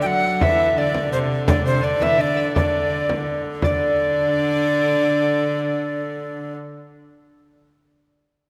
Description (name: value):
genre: medieval dance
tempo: 168 BPM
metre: 3/4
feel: straight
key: D mixolydian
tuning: A4 = 440 Hz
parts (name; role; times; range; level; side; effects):
- alto recorder; melody; 0.0-6.5 s; C5 to G5; -23 LUFS; equal; none
- clear viola da gamba; second line; 0.0-6.5 s; C3 to F#3; -27 LUFS; equal; none
- concert harp; second line; 0.0-7.2 s; C5 to F#5; -30 LUFS; equal; none
- clear hurdy-gurdy; drone; 0.0-6.6 s; D3; -32 LUFS; equal; none
- frame drum; percussion; 0.1-3.8 s; none; -27 LUFS; equal; none
room: wet concert hall reverb, RT60 2.3 s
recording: none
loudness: -20 LUFS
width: mono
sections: 0.0-3.6 A section; 3.6-5.8 B section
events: none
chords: none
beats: 0.05 | 0.41 0.77 1.13 | 1.49 1.84 2.20 | 2.56 2.92 3.27 | 3.63 3.99 4.34 | 4.70 5.05 5.41